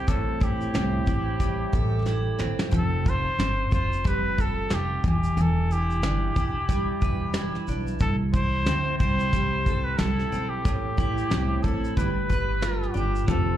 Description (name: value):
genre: acoustic pop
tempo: 91 BPM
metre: 4/4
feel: swing 60% on 16ths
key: C major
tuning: A4 = 442 Hz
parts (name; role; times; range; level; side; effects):
- breathy trumpet; melody; 0.0-13.6 s; G4 to C5; -29 LUFS; left 1 dB; slapback echo
- picked steel-string acoustic guitar; accompaniment; 0.0-13.6 s; A2 to B4; -29 LUFS; right 1 dB; double-tracked left and right
- upright bass; bass; 0.0-13.6 s; E1 to D2; -27 LUFS; equal; none
- soft brush drum kit; drums; 0.1-13.5 s; kick drum, shaker, snare drum; -27 LUFS; equal; none
- bright reed electric piano; accompaniment; 13.3-13.6 s; A3 to C5; -35 LUFS; left 4 dB; fast tremolo, slapback echo
- clean electric guitar; arpeggios; 13.3-13.6 s; F3; -31 LUFS; right 9 dB; slapback echo
room: light reverb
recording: live gig heard through the venue's PA, club reverb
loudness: -22 LUFS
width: side -12 dB against mid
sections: 0.0-13.3 A section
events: drum fill 2.1-2.7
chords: 0.1 Am7; 2.7 Fadd9; 5.0 Em7; 8.0 C6; 10.6 Am7; 12.0 G7